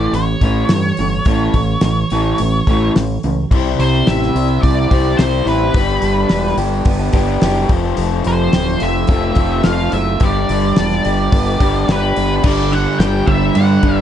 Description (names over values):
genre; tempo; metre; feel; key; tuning
classic rock; 107 BPM; 4/4; straight; unclear; A4 = 439 Hz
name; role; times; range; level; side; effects
octave-fuzz lead guitar; melody; 0.0-14.0 s; B4 to G5; -21 LUFS; equal; wah, distortion
overdriven semi-hollow guitar; riff; 0.0-14.0 s; F2 to C5; -20 LUFS; right 9 dB; none
raw garage guitar; riff; 0.0-14.0 s; F2 to C5; -20 LUFS; left 10 dB; overdrive
growling fingered electric bass; bass; 0.0-14.0 s; D1 to G2; -19 LUFS; equal; overdrive
damped 70s drum kit; drums; 0.1-14.0 s; crash cymbal, hi-hat, kick drum, snare drum; -17 LUFS; equal; vintage 12-bit sampler grit
overdriven electric guitar; riff; 12.4-14.0 s; G2 to G3; -21 LUFS; equal; none
room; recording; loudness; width
light reverb; none; -13 LUFS; side -10 dB against mid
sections
0.0-3.5 A section; 3.5-12.4 B section; 12.4-14.0 C section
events
none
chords
0.0 A; 3.5 C; 5.7 G; 7.7 F; 10.2 G; 12.4 G5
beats
0.14 0.70 | 1.26 1.82 2.39 2.95 | 3.51 4.07 4.63 5.19 | 5.75 6.31 6.87 7.43 | 7.99 8.54 9.10 9.66 | 10.22 10.78 11.34 11.89 | 12.45 13.01 13.56